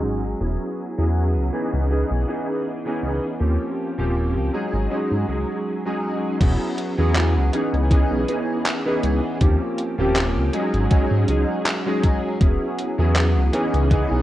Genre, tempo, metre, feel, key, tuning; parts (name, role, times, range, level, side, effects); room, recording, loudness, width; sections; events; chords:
vaporwave; 80 BPM; 4/4; swing 54% on 16ths; E major; A4 = 437 Hz
warm electric grand piano; accompaniment; 0.0-14.2 s; E3 to G#4; -22 LUFS; equal; ensemble chorus, tape echo
chorused synth bass; bass; 0.0-14.2 s; D#1 to G#2; -20 LUFS; equal
electronic kick drum; drums; 6.4-14.1 s; -18 LUFS; equal; overdrive
gated 80s digital drum machine; drums; 6.4-14.1 s; crash cymbal, handclaps, hi-hat; -27 LUFS; equal; gated reverb, overdrive
little or no reverb; worn, warbling old tape, cassette tape, warbly pitch drift, low-pass filter; -19 LUFS; side -14 dB against mid
0.0-6.4 A section; 6.4-14.2 B section
filter sweep 0.0-6.4
0.4 E6; 1.5 C#m9; 3.4 D#13; 4.5 G#7sus4; 6.4 E6; 7.5 C#m9; 9.4 D#13; 10.5 G#7sus4; 12.4 E6; 13.5 C#m9